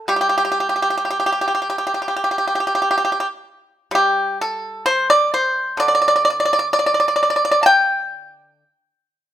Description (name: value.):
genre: chinese traditional, Chinese solo plucked strings.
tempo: 63 BPM.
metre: 4/4.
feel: rubato.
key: unclear.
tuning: A4 = 441 Hz.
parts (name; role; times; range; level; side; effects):
pipa; solo; 0.0-9.3 s; D3 to A5; -15 LUFS; equal; none.
room: light reverb.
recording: band playing live in one room.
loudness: -16 LUFS.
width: side -12 dB against mid.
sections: 0.0-9.3 A section.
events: none.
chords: none.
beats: | 0.10 1.08 2.04 2.99 | 3.93 4.86 5.80 6.75 | 7.68 8.64.